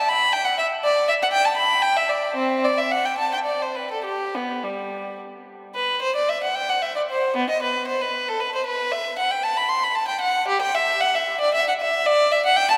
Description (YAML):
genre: classical, baroque-style suite movement for unaccompanied violin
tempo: 102-119 BPM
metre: 3/4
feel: rubato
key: G major, E minor from 5.7 s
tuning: A4 = 441 Hz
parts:
  - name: rich violin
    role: solo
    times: 0.0-12.7 s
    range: G3 to C6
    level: -22 LUFS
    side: equal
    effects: none
room: wet cathedral reverb, RT60 4.9 s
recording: recorded in a church or concert hall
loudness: -22 LUFS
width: mono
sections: 0.0-5.7 A section; 5.7-12.8 A section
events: none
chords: none